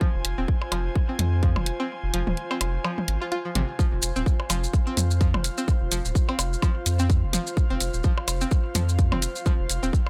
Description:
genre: minimal techno.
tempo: 127 BPM.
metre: 4/4.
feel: swing 57% on 16ths.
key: F minor.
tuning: A4 = 441 Hz.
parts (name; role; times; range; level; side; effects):
string-like resonator pluck; riff; 0.0-9.9 s; C3 to F4; -34 LUFS; equal; chorus, sidechain pumping, dub echo.
electronic kick drum; drums; 0.0-10.0 s; none; -24 LUFS; equal; none.
airy breathy pad; texture; 0.0-10.1 s; F4 to Ab5; -37 LUFS; equal; chorus, sidechain pumping.
round analog bass; bass; 0.1-9.9 s; Eb1 to F2; -28 LUFS; equal; sidechain pumping.
electronic hi-hat; drums; 0.2-9.8 s; none; -31 LUFS; equal; none.
electronic percussion blips and toms; percussion; 0.6-10.1 s; none; -34 LUFS; equal; dub echo.
maracas; percussion; 3.8-10.0 s; none; -33 LUFS; equal; none.
room: digital ambience.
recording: none.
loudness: -24 LUFS.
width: mono.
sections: 0.0-10.1 A section.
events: break 1.9-3.8.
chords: 0.0 Fm.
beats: | 0.01 0.48 0.95 1.43 | 1.90 2.37 2.85 3.32 | 3.79 4.26 4.74 5.21 | 5.68 6.15 6.62 7.10 | 7.57 8.04 8.51 8.99 | 9.46 9.93.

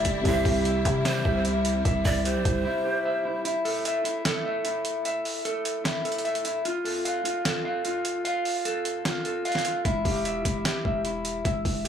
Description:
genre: hip hop, trap.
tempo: 150 BPM.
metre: 4/4.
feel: half-time.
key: A minor.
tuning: A4 = 441 Hz.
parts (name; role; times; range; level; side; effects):
breathy large pan pipes; second line; 0.0-3.4 s; C5 to E5; -32 LUFS; right 3 dB; tape echo.
dark concert grand piano; accompaniment; 0.0-3.5 s; C3 to D5; -32 LUFS; left 2 dB; low-pass filter.
warm symphonic string section; sustained chords; 0.0-3.4 s; C3 to E4; -34 LUFS; equal; none.
mellow electric guitar; arpeggios; 0.0-11.9 s; E4 to F5; -27 LUFS; equal; low-pass filter, tape echo.
growling 808-style bass; bass; 0.0-2.6, 9.9-11.9 s; E1 to C3; -28 LUFS; equal; none.
boom bap sampler-style drum kit; drums; 0.0-11.9 s; hi-hat, kick drum, snare drum; -29 LUFS; equal; overdrive.
room: light reverb, studio ambience.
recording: small room ambience.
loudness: -24 LUFS.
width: side -8 dB against mid.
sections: 0.0-3.5 A section; 3.5-11.9 B section.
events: break 2.7-3.5, 3.5-9.9.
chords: 0.3 C; 3.5 A5; 6.7 F; 9.9 Em.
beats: | 0.25 0.65 1.05 1.45 | 1.85 2.25 2.65 3.05 | 3.45 3.85 4.25 4.65 | 5.05 5.45 5.85 6.25 | 6.65 7.05 7.45 7.85 | 8.25 8.65 9.05 9.45 | 9.85 10.25 10.65 11.05 | 11.45 11.85.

